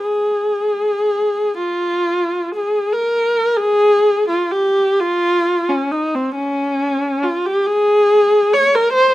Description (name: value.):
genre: classical, free, expressive piece for unaccompanied viola.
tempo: 23-49 BPM (dotted quarters).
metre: 6/8.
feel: rubato.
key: unclear.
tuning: A4 = 441 Hz.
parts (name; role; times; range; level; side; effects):
dark viola; solo; 0.0-9.1 s; C4 to Db5; -14 LUFS; equal; none.
room: light reverb.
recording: none.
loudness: -14 LUFS.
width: side -15 dB against mid.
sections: 0.0-3.6 A section; 3.6-9.1 B section.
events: none.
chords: none.